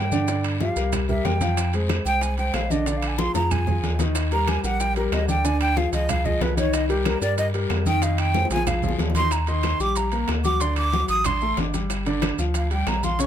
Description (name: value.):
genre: Afro-Cuban jazz.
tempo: 186 BPM.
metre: 4/4.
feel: straight.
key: C minor, Eb major from 9.3 s.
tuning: A4 = 441 Hz.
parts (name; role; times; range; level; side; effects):
breathy jazz flute; melody; 0.0-13.3 s; G4 to Eb6; -26 LUFS; right 2 dB; plate reverb.
warm grand piano; accompaniment; 0.0-13.3 s; Db3 to D6; -26 LUFS; left 1 dB; none.
pure sine sub bass; bass; 0.0-13.3 s; G1 to G2; -25 LUFS; equal; none.
bongos; percussion; 0.1-13.3 s; none; -33 LUFS; left 7 dB; none.
congas; percussion; 0.1-13.3 s; none; -30 LUFS; left 1 dB; none.
guiro; percussion; 0.1-13.3 s; none; -38 LUFS; left 7 dB; none.
maracas; percussion; 0.1-13.3 s; none; -34 LUFS; right 5 dB; none.
timbales; percussion; 0.3-13.3 s; none; -34 LUFS; right 7 dB; none.
claves; percussion; 0.4-13.0 s; none; -38 LUFS; right 4 dB; none.
room: light reverb.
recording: close, detailed microphones.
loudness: -20 LUFS.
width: side -10 dB against mid.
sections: 0.0-9.3 A section; 9.3-13.3 A section.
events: flute solo 0.0-13.3; drum fill 3.2-4.2, 8.3-9.3.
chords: 0.0 Gm7; 0.9 C5; 1.6 Fm; 2.9 Bb7; 4.2 Eb; 5.4 Ddim; 6.1 Dbadd9; 6.7 Cm7; 8.0 Fm7; 8.7 Bb5; 9.3 Ebmaj7; 10.6 D7; 11.9 Gm7.